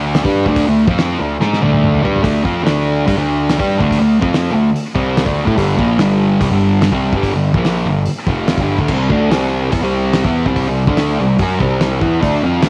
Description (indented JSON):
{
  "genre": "garage rock duo or trio",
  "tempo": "144 BPM",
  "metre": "4/4",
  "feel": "straight",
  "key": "unclear",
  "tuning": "A4 = 440 Hz",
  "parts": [
    { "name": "fuzz guitar", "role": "riff", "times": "0.0-12.7 s", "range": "F2 to G#4", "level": "-17 LUFS", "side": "equal", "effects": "distortion" },
    { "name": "fuzz picked electric bass", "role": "bass", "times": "0.0-12.7 s", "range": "F1 to A2", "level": "-23 LUFS", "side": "equal", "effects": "overdrive" },
    { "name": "cloth-damped thuddy drum kit", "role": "drums", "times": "0.1-12.7 s", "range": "crash cymbal, hi-hat, kick drum, snare drum, toms", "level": "-22 LUFS", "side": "equal", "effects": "none" }
  ],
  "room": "moderate echo chamber reverb, RT60 2.1 s",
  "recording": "none",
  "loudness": "-15 LUFS",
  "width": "mono",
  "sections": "0.0-2.2 A section; 2.2-12.7 B section",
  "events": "drum fill 1.4-2.2",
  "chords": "0.0 D5; 5.6 G5; 8.9 C5"
}